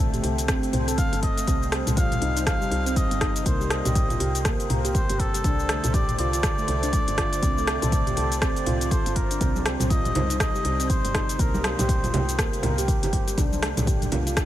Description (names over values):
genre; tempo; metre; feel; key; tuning
afro house; 121 BPM; 4/4; swing 60% on 16ths; C dorian; A4 = 440 Hz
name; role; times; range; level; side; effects
warm analog pad; sustained chords; 0.0-14.5 s; C3 to C5; -34 LUFS; equal; chorus, sidechain pumping
woody FM bass; bass; 0.0-14.5 s; G1 to C2; -29 LUFS; equal; sidechain pumping
handpan; arpeggios; 0.1-14.4 s; G3 to C5; -29 LUFS; right 1 dB; sidechain pumping, analog delay
afro-pop drum kit; drums; 0.1-14.5 s; cabasa, hi-hat, rim click, toms; -28 LUFS; left 1 dB; none
electronic kick drum; drums; 0.5-14.5 s; none; -24 LUFS; equal; none
trumpet with cup mute; melody; 1.0-12.4 s; A4 to F5; -30 LUFS; equal; analog delay
congas; percussion; 9.4-14.5 s; none; -32 LUFS; right 4 dB; none
room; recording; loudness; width
light reverb; none; -21 LUFS; side -13 dB against mid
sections
0.0-14.5 A section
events
none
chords
0.0 D5; 1.5 Cm; 5.4 Dm; 9.4 Cm; 13.4 Dm